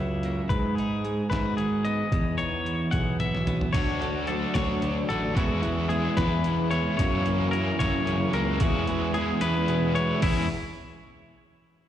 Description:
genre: math rock and midwest emo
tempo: 74 BPM (dotted quarters)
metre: 6/8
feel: straight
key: unclear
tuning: A4 = 442 Hz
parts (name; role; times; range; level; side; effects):
- twelve-string electric guitar; accompaniment; 0.0-10.5 s; E2 to B4; -31 LUFS; right 4 dB; none
- twangy electric guitar; arpeggios; 0.0-10.5 s; E4 to F#5; -31 LUFS; left 5 dB; slapback echo
- fuzz picked electric bass; bass; 0.0-10.5 s; A1 to G#2; -29 LUFS; equal; overdrive
- lo-fi sampler-style drum kit; drums; 0.2-10.4 s; crash cymbal, hi-hat, kick drum, snare drum, toms; -28 LUFS; equal; overdrive
- overdriven electric guitar; riff; 3.7-10.5 s; F#2 to F#4; -28 LUFS; equal; harmonic tremolo
room: light reverb, digital ambience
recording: live gig heard through the venue's PA, recital hall reverb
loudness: -23 LUFS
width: side -11 dB against mid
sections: 0.0-3.7 A section; 3.7-10.2 B section; 10.2-11.8 C section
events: drum fill 2.9-3.7; kick and snare drop out 9.4-10.2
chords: 0.0 F#7; 0.5 G#m7; 2.1 Emaj9; 3.7 Dmaj7; 5.4 E6; 7.0 F#7; 8.6 E6

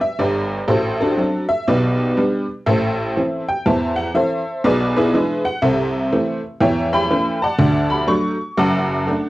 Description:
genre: jazz, stride piano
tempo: 122 BPM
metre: 4/4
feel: swing 64% on 8ths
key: unclear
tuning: A4 = 445 Hz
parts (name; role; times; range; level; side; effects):
- tack piano; solo; 0.0-9.3 s; F#1 to D6; -16 LUFS; equal; none
room: moderate studio reverb, RT60 0.5 s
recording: worn, warbling old tape, cassette tape, warbly pitch drift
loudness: -16 LUFS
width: side -17 dB against mid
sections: 0.0-9.3 A section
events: none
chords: 0.0 G; 0.7 D7/A; 1.7 G/B; 2.7 Am; 4.6 E7/B; 5.6 Am/C; 6.6 A7/E; 7.6 D; 8.6 D/F#

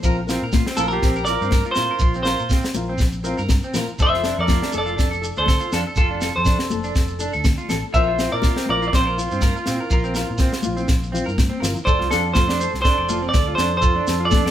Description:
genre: highlife guitar band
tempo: 122 BPM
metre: 4/4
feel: swing 54% on 16ths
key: F major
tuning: A4 = 440 Hz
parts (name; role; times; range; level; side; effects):
- flamenco guitar; accompaniment; 0.0-14.2 s; F3 to Bb4; -31 LUFS; left 4 dB; none
- fingered electric bass; bass; 0.0-14.5 s; F1 to Bb2; -27 LUFS; equal; none
- tight funk drum kit; drums; 0.0-14.5 s; kick drum, snare drum; -20 LUFS; equal; none
- congas; percussion; 0.0-14.4 s; none; -29 LUFS; left 6 dB; none
- shekere; percussion; 0.0-14.4 s; none; -30 LUFS; right 2 dB; none
- electric guitar at the edge of break-up; arpeggios; 0.1-14.5 s; C4 to D5; -28 LUFS; right 2 dB; spring reverb
- semi-hollow electric guitar; melody; 0.8-14.5 s; A4 to E5; -22 LUFS; right 1 dB; none
- mellow trumpet; second line; 0.8-14.5 s; F4 to C5; -30 LUFS; right 2 dB; none
room: moderate stone room reverb, RT60 1.0 s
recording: band playing live in one room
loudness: -18 LUFS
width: side -11 dB against mid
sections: 0.0-11.9 A section; 11.9-14.5 B section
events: drum fill 11.5-11.9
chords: 0.0 Bbsus2; 4.0 F6; 7.9 Bbsus2; 11.9 F6

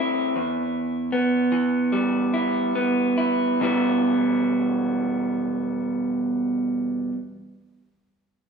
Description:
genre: rock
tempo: 67-80 BPM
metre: 4/4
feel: straight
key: E minor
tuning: A4 = 441 Hz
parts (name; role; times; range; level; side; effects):
- electric guitar through a small old amp; arpeggios; 0.0-7.1 s; E2 to E4; -21 LUFS; right 1 dB; none
room: wet large studio reverb, RT60 1.4 s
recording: band playing live in one room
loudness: -21 LUFS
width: side -6 dB against mid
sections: 0.0-3.6 A section; 3.6-7.2 B section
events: slowing down 0.0-3.6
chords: 0.3 Em

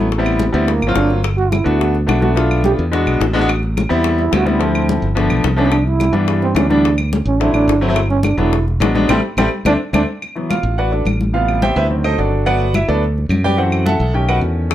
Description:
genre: Afro-Cuban jazz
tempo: 214 BPM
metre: 4/4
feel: straight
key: G major, D major from 10.2 s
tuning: A4 = 440 Hz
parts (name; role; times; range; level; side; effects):
- clear concert grand piano; accompaniment; 0.0-14.7 s; C3 to A5; -18 LUFS; left 1 dB; none
- modern bright fingered electric bass; bass; 0.0-14.7 s; E1 to G2; -17 LUFS; equal; none
- bongos; percussion; 0.1-10.0, 14.7 s; none; -25 LUFS; left 7 dB; none
- congas; percussion; 0.1-14.7 s; none; -24 LUFS; left 2 dB; none
- claves; percussion; 0.3-14.7 s; none; -27 LUFS; equal; none
- growling trombone; second line; 0.5-10.0 s; A#3 to G4; -19 LUFS; right 4 dB; none
room: light reverb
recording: none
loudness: -13 LUFS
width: side -12 dB against mid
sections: 0.0-1.2 A section; 1.2-10.2 A section; 10.2-14.7 A section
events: trombone solo 0.0-10.2; band accent 9.1-10.2; drum fill 9.8-10.2; grand piano solo 10.2-14.7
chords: 0.1 Am7; 0.7 D7alt; 1.2 Gmaj7; 2.4 Bm7b5; 2.9 E7; 3.5 Am7; 4.6 Dm7; 5.2 G7; 5.7 Cmaj7; 6.8 D7; 8.0 Gmaj7; 8.5 E7; 9.1 Am7; 9.7 D5; 10.2 D69; 11.3 Am9; 11.9 D7b9; 12.5 Gmaj9; 13.6 F#m7b5; 14.1 B7

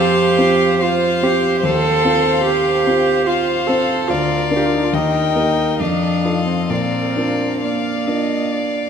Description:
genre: classical, slow romantic movement for piano quintet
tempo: 64-74 BPM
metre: 3/4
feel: rubato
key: Bb major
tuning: A4 = 440 Hz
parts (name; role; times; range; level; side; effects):
- warm violin; melody; 0.0-8.9 s; F5 to G5; -24 LUFS; left 7 dB; none
- rich violin; second line; 0.0-8.9 s; C5 to Eb5; -23 LUFS; left 4 dB; none
- warm cello; second line; 0.0-8.9 s; Bb3 to A4; -18 LUFS; right 4 dB; none
- warm concert grand piano; accompaniment; 0.0-8.9 s; D2 to C5; -20 LUFS; left 2 dB; none
- warm viola; accompaniment; 0.0-8.9 s; A4 to F5; -26 LUFS; right 3 dB; none
room: wet concert hall reverb, RT60 2.4 s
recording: minimal, uncompressed stereo recording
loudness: -14 LUFS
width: side -7 dB against mid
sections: 0.0-8.9 A section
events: none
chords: 0.0 F5; 1.6 F7/Eb; 4.1 Bb/D; 4.9 Eb; 5.8 F7; 6.7 Bb

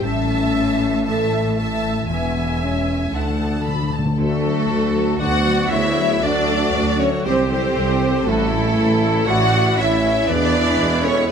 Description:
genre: cinematic, heroic adventure film score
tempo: 118 BPM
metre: 4/4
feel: straight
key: D major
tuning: A4 = 442 Hz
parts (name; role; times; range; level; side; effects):
- rich symphonic violin section; melody; 0.0-11.3 s; A4 to A5; -28 LUFS; left 3 dB; none
- dark symphonic violin section; second line; 0.0-11.3 s; A4 to B5; -24 LUFS; left 1 dB; none
- clear symphonic viola section; accompaniment; 0.0-11.3 s; B3 to E5; -28 LUFS; right 2 dB; none
- dark French horn section; sustained chords; 0.0-11.2 s; A3 to A4; -25 LUFS; left 3 dB; none
- concert harp; arpeggios; 0.0-11.3 s; A2 to E5; -29 LUFS; left 12 dB; none
- rich symphonic cello section; bass; 0.0-11.3 s; D2 to F#4; -25 LUFS; right 2 dB; none
- rich symphonic double bass section; bass; 0.0-11.3 s; E1 to E2; -24 LUFS; right 2 dB; none
- timpani; percussion; 3.2-4.1 s; D3; -25 LUFS; left 3 dB; none
- dark clarinet; second line; 4.2-11.3 s; E4 to D5; -28 LUFS; left 1 dB; none
- mellow flute section; second line; 4.2-11.3 s; A4 to F#5; -28 LUFS; left 1 dB; none
- bright trombone section; sustained chords; 4.2-11.3 s; C#3 to C#4; -31 LUFS; right 5 dB; none
- mellow trumpet section; stabs; 4.2-11.3 s; E4 to G4; -27 LUFS; right 2 dB; none
- warm tuba; bass; 4.2-11.3 s; E1 to D2; -25 LUFS; right 5 dB; none
room: light reverb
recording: close, detailed microphones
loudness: -16 LUFS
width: side -7 dB against mid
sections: 0.0-4.2 A section; 4.2-11.3 A section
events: timpani fill 3.1-4.2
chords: 0.0 A; 2.1 E; 3.1 D; 5.2 Bm/D; 6.2 D; 7.2 C; 8.3 A; 10.3 E

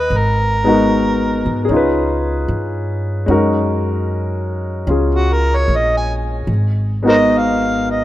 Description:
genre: jazz ballad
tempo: 75 BPM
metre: 4/4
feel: swing 69% on 8ths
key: unclear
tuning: A4 = 439 Hz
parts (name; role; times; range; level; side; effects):
- overdriven harmonica; melody; 0.0-8.0 s; Gb4 to Ab5; -18 LUFS; right 1 dB; none
- clear concert grand piano; accompaniment; 0.0-8.0 s; Gb3 to Cb5; -17 LUFS; left 1 dB; none
- upright bass; bass; 0.0-8.0 s; Ab1 to Ab2; -19 LUFS; equal; none
room: moderate plate reverb, RT60 2.8 s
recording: rough home demo mix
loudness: -14 LUFS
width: side -14 dB against mid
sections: 0.0-8.0 A section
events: harmonica solo 0.0-8.0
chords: 0.1 Abm7; 1.7 Db7; 3.3 Gb69; 6.5 Abm7

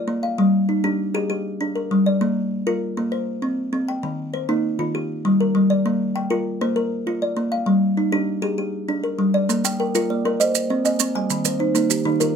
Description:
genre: southern african traditional, mbira-style interlocking cycle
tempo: 132 BPM (dotted quarters)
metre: 12/8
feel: straight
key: Bb mixolydian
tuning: A4 = 438 Hz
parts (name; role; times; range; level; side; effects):
- kalimba; arpeggios; 0.0-12.4 s; Eb3 to Ab5; -20 LUFS; equal; none
- maracas; percussion; 9.5-12.3 s; none; -23 LUFS; right 11 dB; none
- kalimba; arpeggios; 9.6-12.4 s; Eb3 to Ab5; -24 LUFS; right 2 dB; none
room: light reverb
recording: none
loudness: -19 LUFS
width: side -7 dB against mid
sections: 0.0-9.5 A section; 9.5-12.4 A section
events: none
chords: 0.4 Gm; 2.2 Bb; 3.1 C5; 4.0 Eb; 4.9 Gm; 5.9 Bb; 7.7 Gm; 9.5 Bb; 10.4 Cm; 11.3 Eb

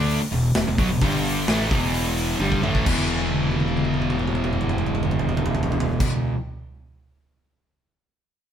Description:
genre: hard rock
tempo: 130 BPM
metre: 4/4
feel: straight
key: E minor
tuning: A4 = 441 Hz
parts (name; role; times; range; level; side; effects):
- overdriven electric guitar; riff; 0.0-6.4 s; E2 to D4; -23 LUFS; equal; none
- fuzz fingered electric bass; bass; 0.0-6.1 s; E1 to D2; -27 LUFS; equal; overdrive
- big rock drum kit; drums; 0.1-6.1 s; crash cymbal, hi-hat, kick drum, snare drum, toms; -24 LUFS; equal; none
room: moderate stone room reverb, RT60 1.2 s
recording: band playing live in one room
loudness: -20 LUFS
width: side -9 dB against mid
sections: 0.0-2.9 A section; 2.9-6.6 B section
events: drum fill 2.4-2.9, 3.1-6.0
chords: 0.0 E5; 1.0 G5; 1.5 Em; 2.9 E5

